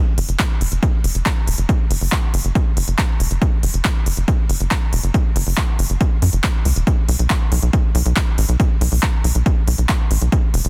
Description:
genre	uplifting trance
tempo	139 BPM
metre	4/4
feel	straight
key	F# minor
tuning	A4 = 440 Hz
part	tight sequencer bass	bass	0.2-10.7 s	E1 to F#2	-20 LUFS	equal	sidechain pumping
part	big-room dance drum kit	drums	0.2-10.7 s	handclaps, hi-hat	-27 LUFS	equal	overdrive
part	electronic kick drum	drums	0.4-10.4 s	none	-20 LUFS	equal	overdrive
room	little or no reverb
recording	dense, heavily limited modern master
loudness	-18 LUFS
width	mono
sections	0.0-10.7 A section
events	none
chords	none

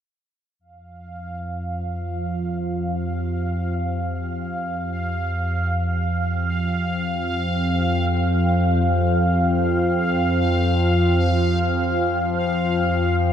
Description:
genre	dark ambient drone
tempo	free time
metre	none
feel	none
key	unclear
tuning	A4 = 440 Hz
part	deep dark ambient pad	sustained chords	1.4-13.3 s	F4 to G5	-30 LUFS	right 1 dB	chorus, built-in reverb, shimmer reverb
part	analog drone	drone	1.0-13.3 s	F2 to F3	-21 LUFS	equal	chorus
part	bubbling stepped-filter texture	texture	1.0-13.3 s	F5	-26 LUFS	equal	chorus, built-in reverb, shimmer reverb
room	wet huge ambient reverb, RT60 8.3 s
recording	in a vast, echoing space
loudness	-20 LUFS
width	side -9 dB against mid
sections	0.6-13.3 A section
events	fade-out on ambient pad 0.6-13.3; filter sweep on synth drone 0.6-13.3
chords	0.6 F5

